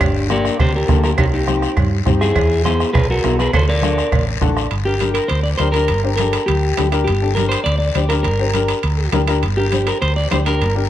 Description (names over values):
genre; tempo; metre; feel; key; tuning
latin, cumbia; 204 BPM; 4/4; straight; G minor from 4.7 s; A4 = 439 Hz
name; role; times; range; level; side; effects
electric guitar at the edge of break-up; melody; 0.0-10.7 s; D4 to D5; -20 LUFS; equal; spring reverb, slapback echo
hollow-body short-scale fingered electric bass; bass; 0.0-10.9 s; G1 to G2; -19 LUFS; equal; none
bombo; percussion; 0.0-4.7 s; none; -20 LUFS; right 2 dB; none
congas; percussion; 0.0-10.5 s; none; -26 LUFS; left 1 dB; none
cowbell and timbales; percussion; 0.0-10.8 s; none; -26 LUFS; right 6 dB; none
guiro; percussion; 0.0-10.9 s; none; -29 LUFS; left 9 dB; none
warm upright piano; accompaniment; 0.3-10.8 s; Bb3 to F#5; -23 LUFS; left 5 dB; none
room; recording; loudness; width
light reverb; none; -14 LUFS; side -12 dB against mid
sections
0.0-4.7 A section; 4.7-10.9 B section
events
upright piano fill 4.3-4.7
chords
0.0 Gm; 1.2 Cm; 2.4 E; 3.5 D; 4.7 Gm